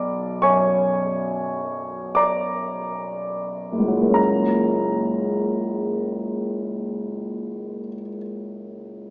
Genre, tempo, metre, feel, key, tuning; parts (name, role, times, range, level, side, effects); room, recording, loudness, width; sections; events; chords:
classical, impressionist solo piano; 29-36 BPM (dotted quarters); 9/8; rubato; F# major; A4 = 440 Hz
warm grand piano; solo; 0.0-9.1 s; F#1 to D6; -21 LUFS; equal
wet recital hall reverb, RT60 1.6 s; recorded in a church or concert hall, small speaker sound; -20 LUFS; side -28 dB against mid
0.0-4.2 A section; 4.2-9.1 B section
slowing down 0.0-4.2
0.0 Bm6; 4.2 F#add9